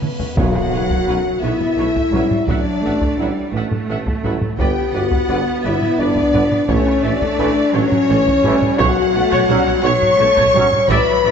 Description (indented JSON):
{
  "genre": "cinematic, epic orchestral film score",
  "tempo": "57 BPM (dotted quarters)",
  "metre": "6/8",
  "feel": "straight",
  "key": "B minor",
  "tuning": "A4 = 439 Hz",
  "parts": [
    { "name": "warm symphonic violin section", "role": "melody", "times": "0.0-11.3 s", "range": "B4 to C#6", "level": "-28 LUFS", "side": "left 5 dB", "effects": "none" },
    { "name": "rich symphonic violin section", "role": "second line", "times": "0.0-11.3 s", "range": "A4 to C#6", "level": "-25 LUFS", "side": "left 2 dB", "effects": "none" },
    { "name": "clear symphonic viola section", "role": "accompaniment", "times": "0.0-11.3 s", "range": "C#4 to F#5", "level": "-26 LUFS", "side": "right 2 dB", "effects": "none" },
    { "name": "dark French horn section", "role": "sustained chords", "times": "0.0-11.3 s", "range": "E3 to C#5", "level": "-17 LUFS", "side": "left 3 dB", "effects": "none" },
    { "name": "rich symphonic cello section", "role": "bass", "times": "0.0-11.3 s", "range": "A2 to B3", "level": "-24 LUFS", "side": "right 4 dB", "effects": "none" },
    { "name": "warm studio double bass section", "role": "bass", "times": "0.0-11.3 s", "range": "G1 to B1", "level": "-25 LUFS", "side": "right 4 dB", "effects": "none" },
    { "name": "taiko ensemble", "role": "drums", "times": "0.0-11.3 s", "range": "none", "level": "-23 LUFS", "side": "right 1 dB", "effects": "none" },
    { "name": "reverse cymbal and impact", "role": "sound effects", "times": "0.1-2.5 s", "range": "none", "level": "-28 LUFS", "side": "right 1 dB", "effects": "none" },
    { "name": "warm tuba", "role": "bass", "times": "0.4-11.3 s", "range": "G1 to B1", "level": "-25 LUFS", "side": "right 5 dB", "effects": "none" },
    { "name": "timpani", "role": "percussion", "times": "0.4-1.4, 8.8-9.8 s", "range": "B2", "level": "-25 LUFS", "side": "equal", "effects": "none" },
    { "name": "dark trombone section", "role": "sustained chords", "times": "1.1-10.7 s", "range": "D3 to E4", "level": "-26 LUFS", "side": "right 4 dB", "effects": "none" }
  ],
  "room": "wet scoring stage reverb, RT60 1.8 s",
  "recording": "nothing above 7.8 kHz",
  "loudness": "-14 LUFS",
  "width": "side -7 dB against mid",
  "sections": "0.4-11.3 A section",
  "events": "drum fill 0.0-0.4; reverse cymbal 0.1; impact 0.4-2.5",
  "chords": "0.4 Bsus2; 2.5 Dadd9/A; 4.6 G; 6.7 A; 8.8 Bsus2"
}